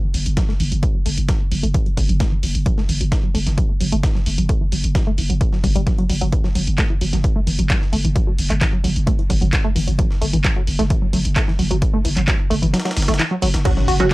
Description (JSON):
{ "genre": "driving peak-time techno", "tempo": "131 BPM", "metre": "4/4", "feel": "straight", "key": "F# minor", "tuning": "A4 = 440 Hz", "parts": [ { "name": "tight sequenced synth", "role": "riff", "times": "0.0-14.1 s", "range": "E3 to F#4", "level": "-24 LUFS", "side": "equal", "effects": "chorus, sidechain pumping, analog delay" }, { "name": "growling 808-style bass", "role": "bass", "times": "0.1-14.1 s", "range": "F#1", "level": "-20 LUFS", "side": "equal", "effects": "overdrive, sidechain pumping, low-pass filter" }, { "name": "breakbeat sampler-style drum kit", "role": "drums", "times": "0.1-14.1 s", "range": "hi-hat, snare drum", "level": "-32 LUFS", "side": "equal", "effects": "sidechain pumping on hats, high-pass filter on hats, high-pass filter on snare" }, { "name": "punchy analog drum machine", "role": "drums", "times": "0.1-14.1 s", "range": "crash cymbal, handclaps, hi-hat, toms", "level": "-26 LUFS", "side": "equal", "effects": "sidechain pumping on hats, sidechain pumping on cymbals, sidechain pumping on toms" }, { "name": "electronic kick drum", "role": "drums", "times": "0.4-14.1 s", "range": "none", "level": "-19 LUFS", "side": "equal", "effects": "none" }, { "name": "filtered dub chord stab", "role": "stabs", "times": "13.7-14.1 s", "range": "F#3 to F#4", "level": "-20 LUFS", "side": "right 2 dB", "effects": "phaser, ensemble chorus, sidechain pumping" }, { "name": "impact", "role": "sound effects", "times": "13.7-14.1 s", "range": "none", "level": "-24 LUFS", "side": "equal", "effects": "none" } ], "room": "little or no reverb", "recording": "dry, gritty hardware recording, cassette tape", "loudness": "-16 LUFS", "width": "side -20 dB against mid", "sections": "0.0-13.7 A section", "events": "filter sweep on synth arpeggio sound 0.0-13.7; kick drops out 12.7-13.7; impact 13.7-14.1", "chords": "none" }